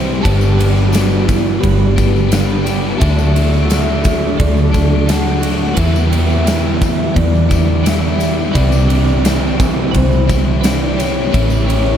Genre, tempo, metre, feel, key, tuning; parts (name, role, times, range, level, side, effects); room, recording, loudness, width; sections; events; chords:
rock, shoegaze and dream pop; 86 BPM; 4/4; straight; D major; A4 = 439 Hz
soft octave-layered synth lead; melody; 0.0-12.0 s; E4 to F#5; -22 LUFS; left 1 dB; chorus, phaser, ping-pong delay
twelve-string electric guitar; arpeggios; 0.0-12.0 s; F#4 to B5; -29 LUFS; right 6 dB; analog chorus, ping-pong delay
overdriven electric guitar; riff; 0.0-12.0 s; G2 to E4; -21 LUFS; left 8 dB; analog chorus
overdriven electric guitar; riff; 0.0-12.0 s; G2 to E4; -22 LUFS; right 1 dB
overdriven semi-hollow guitar; riff; 0.0-12.0 s; E2 to G4; -22 LUFS; right 8 dB; reverse reverb
vintage muted fingered electric bass; bass; 0.0-12.0 s; G1 to E2; -16 LUFS; equal
huge arena drum kit; drums; 0.3-11.9 s; kick drum, ride cymbal, snare drum; -18 LUFS; equal
tambourine; percussion; 0.4-11.8 s; -35 LUFS; left 13 dB
light reverb, small room ambience; -11 LUFS; side -9 dB against mid
0.0-12.0 A section
0.2 G; 3.0 D; 5.8 Em7; 8.6 Cmaj7; 11.3 Aadd9